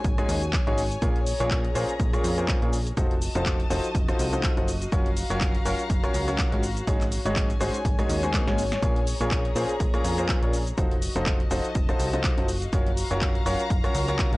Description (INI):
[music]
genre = piano house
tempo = 123 BPM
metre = 4/4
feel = swing 56% on 16ths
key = Bb minor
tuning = A4 = 444 Hz
[part]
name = plucky analog bass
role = bass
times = 0.0-14.4 s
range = F1 to F2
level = -30 LUFS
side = equal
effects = transformer saturation, sidechain pumping
[part]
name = electronic kick drum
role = drums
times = 0.0-14.3 s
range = none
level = -26 LUFS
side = equal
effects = none
[part]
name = house drum kit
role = drums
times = 0.0-14.4 s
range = handclaps, hi-hat, rim click, shaker, snare drum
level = -33 LUFS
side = equal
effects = none
[part]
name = dark studio string section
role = texture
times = 0.0-14.4 s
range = Gb4 to Bb5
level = -33 LUFS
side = left 2 dB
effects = sidechain pumping
[part]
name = clear upright piano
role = riff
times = 0.2-14.4 s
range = Bb2 to Db5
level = -29 LUFS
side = equal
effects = sidechain pumping
[part]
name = swell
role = sound effects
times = 8.1-8.8 s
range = none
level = -37 LUFS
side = left 4 dB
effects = none
[sound]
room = digital ambience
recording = dry, gritty hardware recording, cassette tape, nothing above 10.8 kHz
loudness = -22 LUFS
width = side -20 dB against mid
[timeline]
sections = 0.0-14.4 A section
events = drum fill 8.3-8.8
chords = 0.0 Ab7sus4; 1.0 Bbm7; 3.0 F7b9; 4.7 Gbmaj7; 6.6 Ab7sus4; 8.8 Bbm7; 10.8 F7b9; 12.5 Gbmaj7